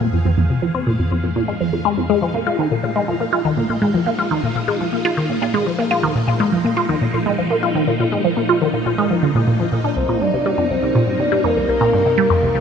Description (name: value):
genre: ambient, sequencer-driven space music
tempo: 122 BPM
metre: 4/4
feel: straight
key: unclear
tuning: A4 = 439 Hz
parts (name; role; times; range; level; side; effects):
- phased string machine; sustained chords; 0.0-12.6 s; F2 to Ab4; -25 LUFS; equal; ensemble chorus, phaser, shimmer reverb
- resonant blip pluck; riff; 0.0-12.6 s; C2 to F4; -17 LUFS; equal; phaser, shimmer reverb, ping-pong delay
- bubbling stepped-filter texture; texture; 0.0-12.6 s; Eb4 to F5; -36 LUFS; right 1 dB; chorus, built-in reverb, shimmer reverb
- soft octave-layered synth lead; melody; 10.0-12.6 s; Bb4 to D5; -18 LUFS; left 1 dB; chorus, tremolo, shimmer reverb, ping-pong delay
room: moderate plate reverb, RT60 3.3 s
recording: none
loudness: -16 LUFS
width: side -7 dB against mid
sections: 0.0-12.6 A section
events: fade-in on string machine 0.0-12.6; fade-in on synth texture 0.0-12.6; filter sweep on synth arpeggio sound 0.0-12.6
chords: 0.0 Fm7; 2.1 Bbsus4; 10.0 Cm7